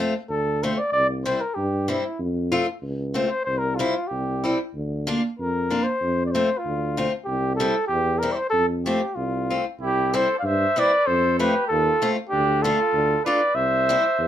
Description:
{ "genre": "alpine folk, alpine dance band", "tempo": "95 BPM", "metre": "2/4", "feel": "straight", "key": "F major, C major from 9.8 s", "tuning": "A4 = 440 Hz", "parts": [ { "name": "picked acoustic archtop guitar", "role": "accompaniment", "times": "0.0-14.0 s", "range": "G3 to F4", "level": "-24 LUFS", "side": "left 2 dB", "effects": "none" }, { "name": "warm tuba", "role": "bass", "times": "0.0-14.3 s", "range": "C2 to G2", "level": "-26 LUFS", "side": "equal", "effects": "none" }, { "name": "warm flugelhorn", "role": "melody", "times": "0.3-14.3 s", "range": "E4 to F5", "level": "-22 LUFS", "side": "equal", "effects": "none" }, { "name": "warm trumpet", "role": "second line", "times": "9.8-14.3 s", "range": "D4 to D5", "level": "-28 LUFS", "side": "right 7 dB", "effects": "none" } ], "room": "moderate small room ambience, RT60 0.5 s", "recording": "minimal, uncompressed stereo recording", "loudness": "-20 LUFS", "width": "side -10 dB against mid", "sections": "0.0-9.8 A section; 9.8-14.3 B section", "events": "none", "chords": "0.0 F; 0.9 C; 2.2 F; 3.5 C; 4.7 Bb/D; 6.0 F; 7.3 C; 8.5 F; 9.8 C; 11.1 F; 12.3 Dm; 13.6 C" }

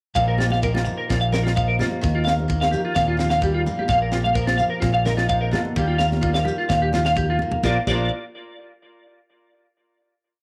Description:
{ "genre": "highlife guitar band", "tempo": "128 BPM", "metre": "4/4", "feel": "straight", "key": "unclear", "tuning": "A4 = 440 Hz", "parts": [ { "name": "picked steel-string acoustic guitar", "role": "accompaniment", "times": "0.1-8.1 s", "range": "Bb2 to Bb4", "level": "-31 LUFS", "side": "equal", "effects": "cassette tape, plate reverb" }, { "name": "clean electric guitar", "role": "arpeggios", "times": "0.1-8.1 s", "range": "F4 to F5", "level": "-25 LUFS", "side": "equal", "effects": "ensemble chorus, cassette tape, analog delay, plate reverb" }, { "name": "shekere", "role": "percussion", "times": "0.1-8.1 s", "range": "none", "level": "-39 LUFS", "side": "equal", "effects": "none" }, { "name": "fingered electric bass", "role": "bass", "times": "0.2-8.1 s", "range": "Bb1 to Eb2", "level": "-25 LUFS", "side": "equal", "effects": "none" }, { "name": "tight funk drum kit", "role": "drums", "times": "0.2-8.0 s", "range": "crash cymbal, kick drum, snare drum, toms", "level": "-30 LUFS", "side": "equal", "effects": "cassette tape" }, { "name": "congas", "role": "percussion", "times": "0.4-8.1 s", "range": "none", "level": "-33 LUFS", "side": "equal", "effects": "none" } ], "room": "moderate studio reverb, RT60 0.6 s", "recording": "home recording on cassette", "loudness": "-21 LUFS", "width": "mono", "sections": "0.1-7.6 groove; 7.6-9.5 final chord", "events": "drum fill 7.4", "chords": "0.1 Bbsus4; 2.0 Ebadd9; 3.9 Bbsus4; 5.8 Ebadd9; 7.6 Bb" }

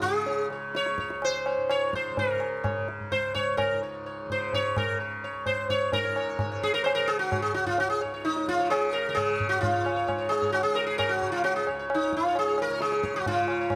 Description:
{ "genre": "indian classical, Hindustani", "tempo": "130 BPM", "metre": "4/4", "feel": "straight", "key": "Db raga bilaval", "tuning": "A4 = 440 Hz", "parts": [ { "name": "sitar", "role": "melody", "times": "0.0-13.8 s", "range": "Eb4 to Db5", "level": "-29 LUFS", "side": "equal", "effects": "none" }, { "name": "tanpura", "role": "drone", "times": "0.0-13.8 s", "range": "Db2 to Db3", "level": "-38 LUFS", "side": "equal", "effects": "none" }, { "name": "tabla", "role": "percussion", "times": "0.0-13.8 s", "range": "none", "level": "-34 LUFS", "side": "equal", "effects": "none" } ], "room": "moderate recital hall reverb, RT60 1.6 s", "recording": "close, detailed microphones", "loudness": "-27 LUFS", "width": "mono", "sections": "0.0-5.9 A section; 5.9-13.8 B section", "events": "speeding up 0.0-13.8", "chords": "none" }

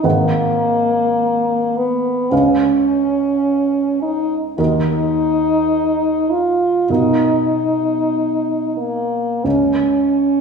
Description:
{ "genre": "classical, romantic duo for French horn and grand piano", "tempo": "44-53 BPM", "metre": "4/4", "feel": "rubato", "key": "unclear", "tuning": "A4 = 445 Hz", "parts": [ { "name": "mellow French horn", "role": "melody", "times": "0.0-10.4 s", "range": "A#3 to E#4", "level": "-16 LUFS", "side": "equal", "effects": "none" }, { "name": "dark baby grand piano", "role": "accompaniment", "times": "0.0-10.4 s", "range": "G#1 to F#5", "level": "-20 LUFS", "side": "right 2 dB", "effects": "none" } ], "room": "wet recital hall reverb, RT60 1.5 s", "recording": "heard from further back in the room, small room ambience", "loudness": "-14 LUFS", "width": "side -5 dB against mid", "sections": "0.0-10.4 A section", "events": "none", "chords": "0.0 G#m7; 2.3 C#7; 4.6 D#m; 6.9 Bmaj7; 9.4 N.C." }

